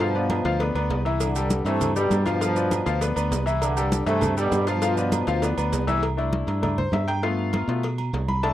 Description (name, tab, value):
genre	latin, salsa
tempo	199 BPM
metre	4/4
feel	straight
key	C major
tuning	A4 = 440 Hz
part	mellow trombone section	melody	0.0-5.5 s	G2 to A3	-26 LUFS	right 1 dB	none
part	bright grand piano	accompaniment	0.0-8.5 s	E3 to B5	-27 LUFS	left 4 dB	none
part	fingered electric bass	bass	0.0-8.5 s	C2 to B2	-26 LUFS	right 1 dB	none
part	agogo bells and timbales	percussion	0.0-8.5 s	none	-32 LUFS	right 8 dB	none
part	congas	percussion	0.0-8.5 s	none	-30 LUFS	equal	none
part	cowbell	percussion	0.0-8.5 s	none	-34 LUFS	left 4 dB	none
part	maracas	percussion	1.2-6.0 s	none	-38 LUFS	right 19 dB	none
room	little or no reverb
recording	dry, close 1970s-style studio recording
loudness	-21 LUFS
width	side -13 dB against mid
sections	0.0-6.0 A section; 6.0-8.5 B section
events	drum fill 5.4-6.0; grand piano solo 6.0-8.5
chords	0.0 G7; 1.2 C69; 2.4 G7; 3.6 C69; 4.8 G7; 6.0 C69; 7.2 G7